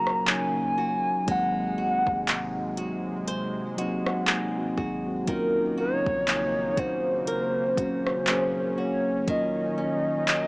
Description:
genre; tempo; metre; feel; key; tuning
contemporary R&B; 60 BPM; 4/4; swing 58% on 16ths; Eb dorian; A4 = 437 Hz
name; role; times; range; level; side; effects
hollow clarinet-like synth lead; melody; 0.0-10.5 s; Bb4 to Bb5; -26 LUFS; equal; chorus, tremolo
mellow tine electric piano; accompaniment; 0.0-10.5 s; Gb3 to Ab5; -30 LUFS; equal; fast stereo tremolo
warm analog pad; sustained chords; 0.0-10.5 s; C3 to Eb4; -34 LUFS; equal; chorus
flamenco guitar; arpeggios; 0.0-10.5 s; Eb3 to C5; -35 LUFS; right 1 dB; none
clean 808-style bass; bass; 0.0-10.5 s; Eb1 to Bb1; -45 LUFS; equal; none
smooth R&B drum kit; drums; 0.1-10.5 s; handclaps, hi-hat, kick drum, rim click; -26 LUFS; equal; none
room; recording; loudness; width
light reverb, digital ambience; small speaker sound, faint mains hum; -24 LUFS; side -28 dB against mid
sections
0.0-10.5 A section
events
tine electric piano fill 3.3-5.3, 10.3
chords
0.0 Ebm7; 1.3 Ab7; 5.3 Ebm7; 9.3 Ebm9

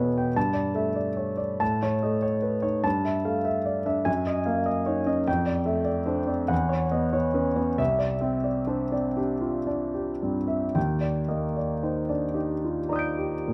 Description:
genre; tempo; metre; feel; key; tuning
classical, impressionist solo piano; 35-51 BPM (dotted quarters); 6/8; rubato; unclear; A4 = 435 Hz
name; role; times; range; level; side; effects
warm concert grand piano; solo; 0.0-13.5 s; C2 to D7; -26 LUFS; equal; none
room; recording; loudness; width
moderate recital hall reverb, RT60 1.4 s; close, detailed microphones; -26 LUFS; mono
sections
0.0-13.5 A section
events
none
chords
0.4 Gsus2; 1.6 Aadd9; 2.9 Gsus2; 4.1 F#69; 5.3 F69; 6.5 Esus2; 7.8 Cadd9; 10.8 Ebmaj7

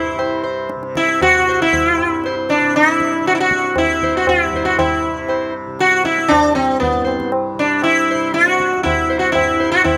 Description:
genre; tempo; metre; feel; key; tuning
indian classical, Hindustani; 118 BPM; 5/4; straight; C raga yaman; A4 = 440 Hz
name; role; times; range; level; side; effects
sitar; melody; 0.0-10.0 s; B3 to C5; -16 LUFS; equal; none
tanpura; drone; 0.0-10.0 s; C2 to C3; -29 LUFS; equal; none
tabla; percussion; 0.2-10.0 s; none; -26 LUFS; equal; none
room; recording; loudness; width
little or no reverb; recorded outdoors, with no room sound; -16 LUFS; mono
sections
0.0-10.0 A section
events
none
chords
none

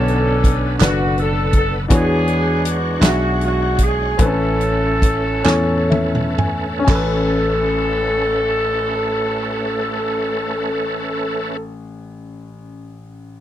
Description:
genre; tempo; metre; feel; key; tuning
slow gospel; 39-55 BPM (dotted quarters); 6/8; straight; A major; A4 = 441 Hz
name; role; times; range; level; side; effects
mellow horn section; melody; 0.0-11.6 s; B3 to A4; -21 LUFS; equal; slapback echo
warm concert grand piano; accompaniment; 0.0-13.4 s; A1 to G#5; -23 LUFS; left 3 dB; none
bright tonewheel organ; sustained chords; 0.0-11.6 s; D3 to C#5; -26 LUFS; right 2 dB; fast rotary speaker, overdrive, chorus vibrato
dry thumbed slap bass; bass; 0.0-11.6 s; F#1 to E2; -21 LUFS; equal; none
natural country drum kit; drums; 0.1-7.1 s; crash cymbal, hi-hat, kick drum, snare drum, toms; -17 LUFS; equal; none
group handclap; percussion; 0.8-7.4 s; none; -24 LUFS; right 25 dB; none
room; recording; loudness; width
little or no reverb; dry, close 1970s-style studio recording; -15 LUFS; side -12 dB against mid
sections
0.0-6.9 A section; 6.9-13.0 B section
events
slowing down 1.9-6.9; drum fill 5.5-6.9; grand piano fill 5.5-6.9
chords
0.0 Bm9; 1.9 E13; 4.2 Amaj9

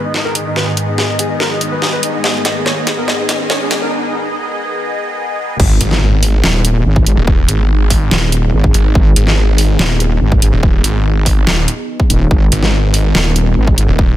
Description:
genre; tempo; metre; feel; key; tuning
heavy wobble dubstep; 143 BPM; 4/4; half-time; G# minor; A4 = 435 Hz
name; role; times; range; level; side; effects
warm concert grand piano; melody; 0.0-3.9 s; D#4 to D#5; -21 LUFS; left 2 dB; low-pass filter, ping-pong delay
supersaw pad; sustained chords; 0.0-14.2 s; G#2 to D#5; -20 LUFS; equal; phaser, sidechain pumping, low-pass filter
riser and impact; sound effects; 0.4-7.3 s; none; -25 LUFS; equal; none
dubstep drum kit; drums; 0.1-13.9 s; crash cymbal, hi-hat, snare drum; -16 LUFS; equal; overdrive, high-pass filter on hats, high-pass filter on snare, high-pass filter on cymbals, high-pass filter on room
wobble bass; bass; 5.6-13.9 s; D#1 to G#1; -12 LUFS; equal; chorus, overdrive
electronic kick drum; drums; 5.6-14.1 s; none; -12 LUFS; equal; overdrive
snarling distorted saw bass; bass; 5.8-14.2 s; D#1 to G#1; -12 LUFS; equal; distortion, overdrive
room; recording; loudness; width
little or no reverb; high-pass filter; -11 LUFS; side -14 dB against mid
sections
0.0-5.6 A section; 5.6-14.2 B section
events
build-up 0.0-5.6; drum fill 0.0-3.9; filter sweep on grand piano 0.0-5.6; filter sweep 0.0-5.6; riser 0.4-3.9; break 3.9-5.6; drop 5.6-14.2; impact 5.6-7.3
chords
0.0 G#m

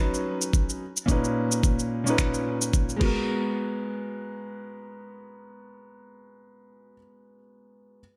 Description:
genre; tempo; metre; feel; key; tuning
sunset chillout; 109 BPM; 4/4; swing 57% on 16ths; G# minor; A4 = 439 Hz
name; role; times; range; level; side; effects
bright grand piano; accompaniment; 0.0-8.0 s; A#2 to B4; -30 LUFS; equal; digital delay
dusty soul sampler-style drum kit; drums; 0.1-3.1 s; cabasa, crash cymbal, finger snaps; -33 LUFS; equal; overdrive, studio reverb
electronic kick drum; drums; 0.5-3.1 s; none; -26 LUFS; equal; overdrive, studio reverb
room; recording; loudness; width
moderate plate reverb, RT60 1.8 s; none; -26 LUFS; mono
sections
0.0-3.3 A section; 3.3-5.5 B section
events
none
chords
0.0 C#9sus4; 0.8 Bmaj9; 3.0 G#m9

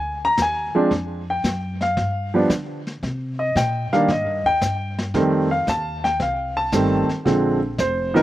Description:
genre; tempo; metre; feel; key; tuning
jazz piano trio; 114 BPM; 4/4; swing 69% on 8ths; unclear; A4 = 440 Hz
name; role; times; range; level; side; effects
warm grand piano; melody; 0.0-8.2 s; D3 to Bb5; -19 LUFS; equal; slapback echo
upright bass; bass; 0.0-8.2 s; F1 to D3; -28 LUFS; equal; none
vintage brush drum kit; drums; 0.4-8.2 s; brushed snare drum, hi-hat, kick drum, snare drum; -26 LUFS; left 1 dB; none
room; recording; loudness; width
little or no reverb; recorded outdoors, with no room sound; -19 LUFS; side -14 dB against mid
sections
0.0-8.2 A section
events
grand piano solo 0.0-8.2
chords
0.0 Bb7 (rootless); 0.9 Fsus2; 2.0 G7(no3); 3.0 Cm7; 5.1 F9; 7.3 Bb9

